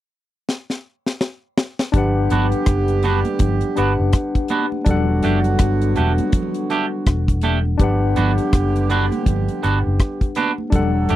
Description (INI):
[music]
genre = lovers rock reggae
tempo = 82 BPM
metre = 4/4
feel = swing 60% on 16ths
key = G major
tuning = A4 = 443 Hz
[part]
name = deep reggae drum kit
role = drums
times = 0.5-11.2 s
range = hi-hat, kick drum, rim click, snare drum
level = -18 LUFS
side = equal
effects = none
[part]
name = mellow horn section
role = second line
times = 1.9-11.2 s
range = D3 to A4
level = -25 LUFS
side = right 7 dB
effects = none
[part]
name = barky tine electric piano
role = accompaniment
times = 1.9-11.2 s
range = G3 to F#5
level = -22 LUFS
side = left 4 dB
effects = medium stereo tremolo
[part]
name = fingered electric bass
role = bass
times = 1.9-11.2 s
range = E1 to G1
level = -19 LUFS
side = equal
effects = none
[part]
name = congas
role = percussion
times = 1.9-11.2 s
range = none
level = -28 LUFS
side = right 4 dB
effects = slapback echo
[part]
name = twangy electric guitar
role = stabs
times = 2.3-11.2 s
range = A3 to G4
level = -21 LUFS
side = right 6 dB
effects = none
[sound]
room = light reverb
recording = dry, close 1970s-style studio recording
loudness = -16 LUFS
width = side -14 dB against mid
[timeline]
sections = 0.0-1.9 A section; 1.9-11.2 B section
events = drum fill 0.5-1.9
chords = 0.0 N.C.; 1.9 Gmaj7; 4.9 Em11; 7.8 Gmaj7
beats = 0.47 1.21 | 1.94 2.67 3.40 4.14 | 4.87 5.60 6.33 7.07 | 7.80 8.53 9.26 9.99 | 10.72